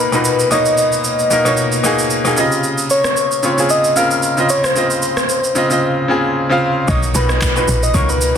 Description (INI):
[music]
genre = amapiano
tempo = 113 BPM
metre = 4/4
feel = swing 55% on 16ths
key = unclear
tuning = A4 = 440 Hz
[part]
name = soft struck synth lead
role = melody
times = 0.0-8.4 s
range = B4 to E#5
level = -17 LUFS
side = left 1 dB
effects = chorus, tape echo
[part]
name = bright grand piano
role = accompaniment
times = 0.0-8.4 s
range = A#2 to E#5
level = -16 LUFS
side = equal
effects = none
[part]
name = smooth R&B drum kit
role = drums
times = 0.1-8.3 s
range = handclaps, kick drum, rim click, shaker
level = -20 LUFS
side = right 2 dB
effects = none
[part]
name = deep log drum bass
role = bass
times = 6.9-8.3 s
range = A#1 to C#2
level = -17 LUFS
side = equal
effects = none
[sound]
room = light reverb, digital ambience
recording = dense, heavily limited modern master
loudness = -13 LUFS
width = side -8 dB against mid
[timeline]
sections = 0.0-6.9 A section; 6.9-8.4 B section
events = none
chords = 0.0 Bmaj9; 2.4 C#maj9; 6.9 Bmaj9